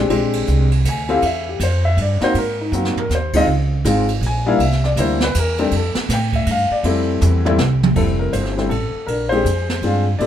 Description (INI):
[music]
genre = jazz piano trio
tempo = 160 BPM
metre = 3/4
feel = swing 63% on 8ths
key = unclear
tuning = A4 = 443 Hz
[part]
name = warm baby grand piano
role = melody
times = 0.0-10.3 s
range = G3 to Ab5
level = -19 LUFS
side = left 2 dB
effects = none
[part]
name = upright bass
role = bass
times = 0.0-10.3 s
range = F1 to A2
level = -19 LUFS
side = right 1 dB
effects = none
[part]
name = jazz brush drum kit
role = drums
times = 0.1-10.3 s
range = crash cymbal, hi-hat, kick drum, ride cymbal, snare drum, toms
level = -24 LUFS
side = right 3 dB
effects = none
[sound]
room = light reverb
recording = minimal, uncompressed stereo recording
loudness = -15 LUFS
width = side -10 dB against mid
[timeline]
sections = 0.0-8.0 A section; 8.0-10.3 B section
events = grand piano solo 0.0-8.0; drum fill 2.7-3.1, 7.2-8.0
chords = 0.1 Bb13; 1.2 Dm11/E (rootless); 2.3 Ab7; 3.5 Db; 4.6 C7; 5.7 Fmaj7; 9.1 Bb13